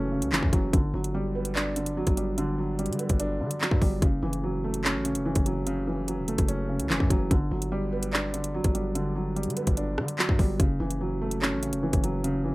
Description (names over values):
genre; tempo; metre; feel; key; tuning
hip hop, drill; 146 BPM; 4/4; half-time; F# phrygian; A4 = 440 Hz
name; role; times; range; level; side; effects
felt-muted upright piano; accompaniment; 0.0-12.5 s; C#3 to D4; -28 LUFS; right 1 dB; none
distorted 808-style bass; bass; 0.0-12.5 s; E1 to D3; -32 LUFS; equal; distortion
drill drum kit; drums; 0.2-12.3 s; handclaps, hi-hat, kick drum, rim click; -25 LUFS; equal; none
room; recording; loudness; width
light reverb; rough home demo mix; -24 LUFS; side -20 dB against mid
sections
0.0-12.5 A section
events
none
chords
0.0 F#m7; 0.7 Gmaj7; 4.0 F#m7; 7.3 Gmaj7; 10.6 F#m7